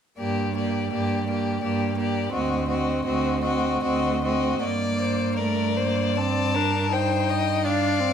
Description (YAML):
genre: classical, slow romantic movement for string quartet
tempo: 72-86 BPM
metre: 3/4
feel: rubato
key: G minor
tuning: A4 = 440 Hz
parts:
  - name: rich violin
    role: melody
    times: 0.2-8.1 s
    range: C5 to A5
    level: -29 LUFS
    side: left 10 dB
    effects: none
  - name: clear violin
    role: second line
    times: 0.2-8.1 s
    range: F#4 to Eb5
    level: -28 LUFS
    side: left 3 dB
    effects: none
  - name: rich viola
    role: accompaniment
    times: 0.2-8.1 s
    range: A3 to Eb4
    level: -26 LUFS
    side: right 2 dB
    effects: none
  - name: clear cello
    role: bass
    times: 0.2-8.1 s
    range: D2 to G2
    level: -28 LUFS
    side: right 4 dB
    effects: none
room: moderate recital hall reverb, RT60 1.4 s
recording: none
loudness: -22 LUFS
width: side -8 dB against mid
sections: 0.2-4.6 A section; 4.6-8.1 B section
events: none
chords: 0.2 Gm; 2.3 D7b9; 4.6 Gm; 6.9 Ebmaj13/G